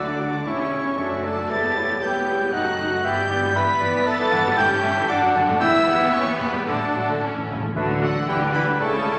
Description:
quick classical-period movement for symphony orchestra; 116 BPM; 2/4; straight; A4 = 440 Hz
rich studio violin section; melody; 0.0-9.2 s; F#5 to B6; -34 LUFS; equal
concert flute; second line; 0.0-9.2 s; A4 to B5; -34 LUFS; equal
mellow oboe; second line; 0.0-9.2 s; A4 to B5; -28 LUFS; equal
rich studio violin section; second line; 0.0-9.2 s; D#4 to F#5; -34 LUFS; equal
warm clarinet; second line; 0.0-9.2 s; D4 to G5; -29 LUFS; equal
clear studio viola section; accompaniment; 0.0-9.2 s; C#3 to G4; -28 LUFS; equal
mellow French horn section; sustained chords; 0.0-9.2 s; F#3 to B4; -34 LUFS; equal
mellow trumpet; stabs; 0.0-9.2 s; A3 to B4; -31 LUFS; equal
rich studio cello section; bass; 0.0-9.2 s; E2 to D3; -33 LUFS; equal
rich studio double bass section; bass; 0.0-9.2 s; E1 to D2; -37 LUFS; equal
timpani; percussion; 0.0-0.2, 7.2-7.7 s; A2 to D3; -36 LUFS; equal
warm bassoon; accompaniment; 7.8-9.2 s; G3 to A3; -34 LUFS; equal
wet scoring stage reverb, RT60 1.6 s; -21 LUFS; mono
0.0-7.8 A section; 7.8-9.2 B section
timpani fill 7.2-7.8
0.5 C#dim/E; 1.0 D/F#; 1.5 Em; 2.5 D#dim/F#; 3.0 Em/G; 4.6 A7; 5.1 D; 5.6 Em; 6.7 D/A; 7.2 A; 7.8 D; 8.3 Em7/D
| 0.47 0.98 | 1.50 2.01 | 2.53 3.04 | 3.55 4.07 | 4.58 5.09 | 5.60 6.13 | 6.67 7.22 | 7.76 8.29 | 8.81

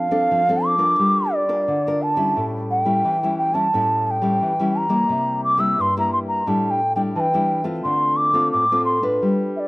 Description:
samba; 88 BPM; 4/4; straight; D minor; A4 = 440 Hz
mellow bansuri; melody; 0.0-9.7 s; D5 to E6; -19 LUFS; equal; slapback echo
nylon-string guitar; accompaniment; 0.0-9.7 s; G2 to B4; -22 LUFS; left 1 dB
little or no reverb; recorded outdoors, with no room sound; -17 LUFS; side -21 dB against mid
0.0-9.7 A section
0.0 Dm7/F; 1.0 Gm7; 2.4 A7; 5.1 C7; 6.5 A7sus4; 7.8 Dm7
0.31 0.99 1.68 | 2.36 3.05 3.73 4.42 | 5.10 5.79 6.47 7.16 | 7.84 8.53 9.21

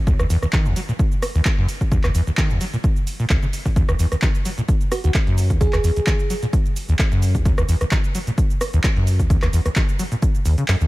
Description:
acid house; 130 BPM; 4/4; swing 54% on 16ths; Eb phrygian; A4 = 441 Hz
acid bass, saw; riff; 0.1-10.9 s; Db2 to Gb3; -20 LUFS; equal; lush chorus, sidechain pumping
electronic kick drum; drums; 0.1-10.3 s; -19 LUFS; equal; overdrive
punchy analog drum machine; drums; 0.1-10.9 s; handclaps, hi-hat, rim click, shaker; -27 LUFS; right 1 dB; overdrive
bell-like FM electric piano; melody; 4.9-6.3 s; Gb4 to Ab4; -29 LUFS; right 2 dB; chorus, tremolo, dub echo
little or no reverb; -17 LUFS; side -19 dB against mid
0.0-10.9 A section
kick drops out 10.7
0.0 Ebm
| 0.07 0.53 0.99 1.46 | 1.92 2.38 2.84 3.30 | 3.76 4.22 4.69 5.15 | 5.61 6.07 6.53 6.99 | 7.46 7.92 8.38 8.84 | 9.30 9.76 10.22 10.69

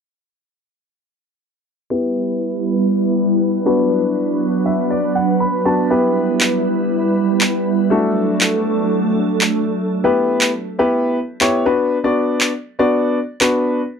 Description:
dance-pop; 120 BPM; 4/4; straight; A4 = 441 Hz
warm grand piano; accompaniment; 1.9-13.8 s; A3 to B5; -18 LUFS; left 2 dB; low-pass filter
glassy FM pad; sustained chords; 1.9-9.9 s; F#3 to B4; -18 LUFS; right 2 dB; ensemble chorus, built-in reverb, low-pass filter
electronic handclaps; drums; 6.4-13.5 s; -16 LUFS; equal
little or no reverb; dry, close 1970s-style studio recording; -15 LUFS; side -6 dB against mid
1.9-9.9 A section; 9.9-14.0 B section
filter sweep 1.9-9.9; grand piano fill 4.4-5.9
1.9 Em; 3.7 Bm; 5.9 Em; 7.9 D; 9.9 Em; 11.7 Bm
| 1.91 2.41 2.91 3.41 | 3.91 4.41 4.91 5.41 | 5.91 6.41 6.91 7.41 | 7.91 8.41 8.91 9.41 | 9.91 10.41 10.91 11.41 | 11.91 12.41 12.91 13.41

